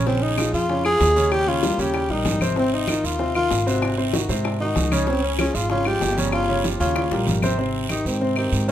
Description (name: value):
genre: Afro-Cuban jazz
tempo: 192 BPM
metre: 4/4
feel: straight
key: unclear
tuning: A4 = 439 Hz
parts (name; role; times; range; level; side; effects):
- warm concert grand piano; accompaniment; 0.0-8.7 s; C3 to Db5; -24 LUFS; equal; none
- upright bass; bass; 0.0-8.7 s; G1 to Ab2; -25 LUFS; right 1 dB; none
- mellow tenor saxophone; melody; 0.1-8.7 s; C4 to Ab4; -23 LUFS; left 2 dB; none
- bongos; percussion; 0.1-7.5 s; none; -31 LUFS; left 4 dB; none
- congas; percussion; 0.1-8.7 s; none; -30 LUFS; left 1 dB; none
- guiro; percussion; 0.1-8.7 s; none; -32 LUFS; right 7 dB; none
- claves; percussion; 0.4-8.5 s; none; -33 LUFS; left 5 dB; none
room: moderate large studio reverb, RT60 1.2 s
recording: minimal, uncompressed stereo recording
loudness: -19 LUFS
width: side -11 dB against mid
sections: 0.0-7.6 A section; 7.6-8.7 B section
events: drum fill 7.0-7.6; tenor saxophone solo 7.6-8.7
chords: 0.1 Bbm7; 1.3 Eb7; 2.6 Ab6; 3.8 Ab7; 5.1 Db; 6.3 Eb9/G; 7.0 Eb9; 7.6 Abmaj7